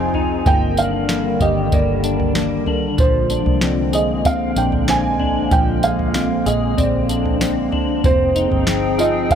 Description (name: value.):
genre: dream pop.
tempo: 95 BPM.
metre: 4/4.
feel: straight.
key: Bb mixolydian.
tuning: A4 = 440 Hz.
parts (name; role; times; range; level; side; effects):
felt-muted upright piano; melody; 0.0-9.4 s; C5 to Ab5; -21 LUFS; right 3 dB; ping-pong delay.
warbly tape-like pad; sustained chords; 0.0-9.4 s; D3 to G5; -23 LUFS; right 2 dB; chorus, built-in reverb.
clean electric guitar; arpeggios; 0.0-9.4 s; F3 to Ab4; -22 LUFS; left 5 dB; ensemble chorus, ping-pong delay.
vintage muted fingered electric bass; bass; 0.0-9.4 s; F1 to C2; -23 LUFS; equal; none.
concert harp; texture; 0.0-9.4 s; F4 to C5; -31 LUFS; left 4 dB; ping-pong delay.
soft vintage rhythm box; drums; 0.1-9.4 s; kick drum, snare drum, tambourine, toms; -21 LUFS; equal; none.
room: light reverb, digital ambience.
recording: none.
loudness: -15 LUFS.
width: side -8 dB against mid.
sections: 0.0-9.4 A section.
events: none.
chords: 0.5 Ebmaj7/G; 3.0 Bb9; 8.0 Fm7.